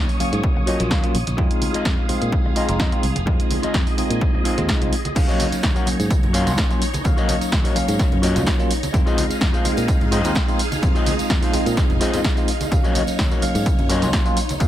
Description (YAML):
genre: filtered disco house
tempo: 127 BPM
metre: 4/4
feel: swing 53% on 16ths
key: Eb dorian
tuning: A4 = 440 Hz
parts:
  - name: bell-like tine electric piano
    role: accompaniment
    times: 0.0-14.7 s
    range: Gb3 to F5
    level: -24 LUFS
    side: equal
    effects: phaser, sidechain pumping, low-pass filter
  - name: phased string machine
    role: sustained chords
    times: 0.0-14.7 s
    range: Eb4 to Eb6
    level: -29 LUFS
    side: equal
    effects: ensemble chorus, phaser, sidechain pumping, low-pass filter
  - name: fingered electric bass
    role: bass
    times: 0.0-14.7 s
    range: F1 to Bb2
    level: -25 LUFS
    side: equal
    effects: sidechain pumping, low-pass filter
  - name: mellow electric guitar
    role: riff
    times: 0.1-14.4 s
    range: F4 to Gb5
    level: -28 LUFS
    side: left 4 dB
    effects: vintage 12-bit sampler grit, sidechain pumping, low-pass filter
  - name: punchy analog drum machine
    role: drums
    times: 0.1-14.7 s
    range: crash cymbal, hi-hat, snare drum, tambourine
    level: -26 LUFS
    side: right 1 dB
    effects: sidechain pumping on hats, sidechain pumping on cymbals, sidechain pumping on perc
  - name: tambourine and congas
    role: percussion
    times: 0.1-14.7 s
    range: none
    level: -32 LUFS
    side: right 1 dB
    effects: sidechain pumping on perc, low-pass filter on perc
  - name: electronic kick drum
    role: drums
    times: 0.4-14.7 s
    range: none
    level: -20 LUFS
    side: equal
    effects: none
room: little or no reverb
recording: none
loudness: -17 LUFS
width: side -12 dB against mid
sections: 0.0-5.2 A section; 5.2-14.7 B section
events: drop 5.2-14.7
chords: 0.0 Ebm7; 1.4 Fm7; 5.2 Ebm7; 8.9 Fm7; 12.7 Ebm7